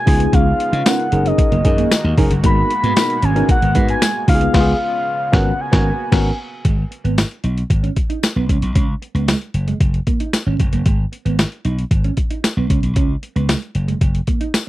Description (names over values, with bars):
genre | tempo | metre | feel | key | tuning
early-eighties boogie funk | 114 BPM | 4/4 | straight | G# dorian | A4 = 440 Hz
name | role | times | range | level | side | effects
expressive synth lead | melody | 0.0-6.4 s | D#5 to B5 | -20 LUFS | left 1 dB | chorus
warm analog pad | sustained chords | 0.0-6.6 s | B2 to F#4 | -28 LUFS | equal | chorus
tine electric piano | accompaniment | 0.1-6.3 s | B3 to B4 | -21 LUFS | left 2 dB | auto-pan
mellow electric guitar | riff | 0.1-14.5 s | G#3 to D#4 | -25 LUFS | right 8 dB | lush chorus
slap bass | bass | 0.1-14.2 s | E#1 to C#3 | -18 LUFS | equal | none
boom bap sampler-style drum kit | drums | 0.1-14.7 s | crash cymbal, hi-hat, kick drum, snare drum | -17 LUFS | equal | none
tambourine | percussion | 0.9-14.7 s | none | -27 LUFS | left 14 dB | none
room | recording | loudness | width
little or no reverb | dry, close 1970s-style studio recording | -14 LUFS | side -16 dB against mid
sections
0.0-6.6 A section; 6.6-14.7 B section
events
band accent 4.5-6.6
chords
0.1 C#7; 1.1 F#69; 2.4 G#m9; 4.3 C#7; 5.3 G#m11; 6.6 G#m; 8.5 C#5; 9.5 F#add9; 10.9 G#m; 12.7 C#5; 13.8 F#